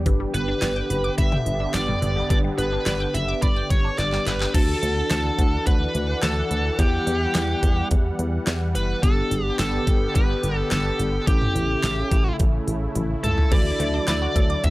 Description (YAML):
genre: synth-pop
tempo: 107 BPM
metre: 4/4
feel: straight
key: D major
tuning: A4 = 440 Hz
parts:
  - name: sweeping resonant pad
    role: sustained chords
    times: 0.0-14.7 s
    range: C#3 to F#5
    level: -30 LUFS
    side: right 1 dB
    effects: chorus
  - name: resonant blip pluck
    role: arpeggios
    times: 0.0-4.5, 13.5-14.6 s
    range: D3 to D6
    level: -32 LUFS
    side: equal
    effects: phaser, analog delay
  - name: solid FM bass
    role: bass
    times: 0.0-14.7 s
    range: F#1 to E2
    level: -25 LUFS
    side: equal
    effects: none
  - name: mellow tine electric piano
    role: accompaniment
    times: 0.1-14.7 s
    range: B3 to D5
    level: -30 LUFS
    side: left 1 dB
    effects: medium stereo tremolo
  - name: pop drum kit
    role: drums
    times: 0.1-14.7 s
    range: crash cymbal, handclaps, hi-hat, kick drum, snare drum, toms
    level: -22 LUFS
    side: equal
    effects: none
  - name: smooth overdriven lead guitar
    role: melody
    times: 0.3-14.7 s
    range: G4 to E5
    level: -26 LUFS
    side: equal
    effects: none
room: digital ambience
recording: dry, gritty hardware recording, transformer saturation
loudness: -20 LUFS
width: side -18 dB against mid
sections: 0.0-4.5 A section; 4.5-14.7 B section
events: drum fill 4.0-4.5, 13.0-13.5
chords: 0.1 G; 4.5 Dadd9; 6.8 Emadd9; 9.0 G; 11.3 A; 13.5 Dadd9